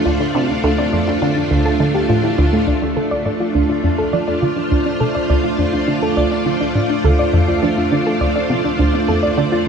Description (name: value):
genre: ambient, sequencer-driven space music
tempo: 103 BPM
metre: 4/4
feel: straight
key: D minor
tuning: A4 = 440 Hz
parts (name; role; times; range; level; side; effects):
- string machine, full ensemble; sustained chords; 0.0-9.7 s; A3 to D5; -18 LUFS; equal; ensemble chorus
- soft round pluck; arpeggios; 0.0-9.6 s; A3 to D5; -20 LUFS; right 2 dB; chorus, auto-pan, tape echo
- resonant blip pluck; riff; 0.0-9.6 s; D2 to F3; -19 LUFS; equal; phaser, lush chorus, tape echo
room: wet huge ambient reverb, RT60 8.6 s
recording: none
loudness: -14 LUFS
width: side -6 dB against mid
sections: 0.0-2.7 A section; 2.7-9.7 B section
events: filter sweep on synth arpeggio sound 2.7-9.7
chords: 0.0 Dm7